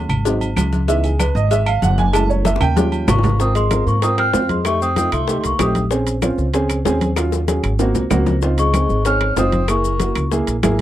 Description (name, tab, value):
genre	Afro-Cuban jazz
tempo	191 BPM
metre	4/4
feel	straight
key	Ab major from 3.4 s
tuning	A4 = 440 Hz
part	warm upright piano	accompaniment	0.0-10.8 s	E3 to A5	-21 LUFS	right 3 dB	none
part	upright bass	bass	0.0-10.8 s	F#1 to Ab2	-19 LUFS	equal	none
part	agogo bells and timbales	percussion	0.1-10.8 s	none	-26 LUFS	right 7 dB	none
part	claves	percussion	0.1-10.8 s	none	-31 LUFS	left 4 dB	none
part	congas	percussion	0.1-10.8 s	none	-24 LUFS	left 1 dB	none
part	maracas	percussion	0.1-10.8 s	none	-33 LUFS	left 14 dB	none
part	cowbell and bongos	percussion	0.3-10.8 s	none	-26 LUFS	left 9 dB	none
part	large celesta	melody	3.1-5.8, 8.6-10.3 s	C6 to F6	-21 LUFS	right 1 dB	none
part	mellow tenor saxophone	second line	3.1-5.8, 8.6-10.3 s	Ab3 to Db4	-24 LUFS	left 6 dB	none
room	light reverb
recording	dry, close 1970s-style studio recording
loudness	-15 LUFS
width	side -12 dB against mid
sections	0.0-3.4 A section; 3.4-10.8 B section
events	upright piano solo 0.0-3.4; drum fill 2.5-3.4, 7.2-8.4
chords	0.3 G#7; 0.9 C#m7; 2.1 F#m7; 2.8 D#7; 3.4 Ab6; 4.7 F7; 5.9 Bbm7; 7.2 Ebm7; 7.8 Ab7; 8.4 Dbmaj7; 9.7 Gb9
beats	0.25 0.57 | 0.88 1.20 1.51 1.82 | 2.14 2.45 2.77 3.08 | 3.40 3.71 4.02 4.34 | 4.65 4.97 5.28 5.59 | 5.91 6.22 6.54 6.85 | 7.17 7.48 7.80 8.11 | 8.43 8.74 9.06 9.37 | 9.69 10.00 10.32 10.63